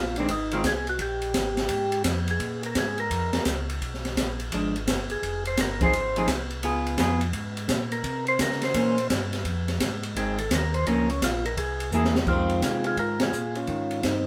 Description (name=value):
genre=soul jazz organ trio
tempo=170 BPM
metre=4/4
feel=swing 65% on 8ths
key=F minor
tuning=A4 = 440 Hz
part: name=percussive tonewheel organ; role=melody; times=0.0-14.3 s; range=C4 to C5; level=-30 LUFS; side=equal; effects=slow rotary speaker
part: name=mellow tonewheel organ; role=bass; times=0.0-14.3 s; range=F1 to Db3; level=-33 LUFS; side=equal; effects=stopped rotary speaker
part: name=vintage hollow-body jazz guitar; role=accompaniment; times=0.2-0.6, 4.5-14.3 s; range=Eb3 to Ab4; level=-29 LUFS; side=equal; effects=none
part: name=open jazz drum kit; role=drums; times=0.2-14.1 s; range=crash cymbal, hi-hat, kick drum, ride cymbal, snare drum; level=-31 LUFS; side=equal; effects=none
room=moderate studio reverb, RT60 0.5 s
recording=band playing live in one room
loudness=-26 LUFS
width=mono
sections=0.0-12.3 A section; 12.3-14.3 B section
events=tonewheel organ solo 0.0-12.3; drum fill 11.9-12.3; band accent 13.2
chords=0.0 Fm7; 1.0 Bbm7; 3.8 Bdim7; 5.2 Fm7; 6.6 Db7; 8.1 C7b9; 9.5 Fm7; 10.9 Bbm; 11.6 Caug7; 12.3 Fm7